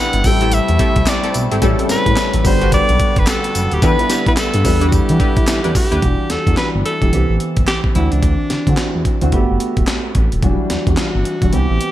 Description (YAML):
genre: R&B, new jack swing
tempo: 109 BPM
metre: 4/4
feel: swing 60% on 16ths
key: E minor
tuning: A4 = 435 Hz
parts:
  - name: bright alto saxophone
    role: melody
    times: 0.0-11.9 s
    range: D4 to G5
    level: -20 LUFS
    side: equal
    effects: none
  - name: warm baby grand piano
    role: accompaniment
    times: 0.0-11.9 s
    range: E3 to B4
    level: -20 LUFS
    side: left 1 dB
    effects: lush chorus
  - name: hand-pumped harmonium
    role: sustained chords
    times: 0.0-6.0 s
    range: C3 to F#4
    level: -24 LUFS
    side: left 1 dB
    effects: none
  - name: smooth gliding synth bass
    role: bass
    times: 0.1-11.8 s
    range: D#1 to E3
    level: -17 LUFS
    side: equal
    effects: none
  - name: breakbeat sampler-style drum kit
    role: drums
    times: 0.1-11.9 s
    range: handclaps, hi-hat, kick drum, snare drum, tambourine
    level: -17 LUFS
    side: equal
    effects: gated reverb
  - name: funky polysynth comp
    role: stabs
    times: 0.4-6.0 s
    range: C4 to B4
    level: -25 LUFS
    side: right 1 dB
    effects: chorus
room: light reverb, digital ambience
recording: bright 1980s-style digital production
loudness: -13 LUFS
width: side -13 dB against mid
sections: 0.0-6.0 A section; 6.0-11.9 B section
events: none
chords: 0.2 Am7; 1.6 A7; 2.4 Gmaj7; 3.8 Em7; 6.0 Em9; 7.1 Cmaj7; 8.0 D9; 9.3 Gmaj9; 10.4 Em9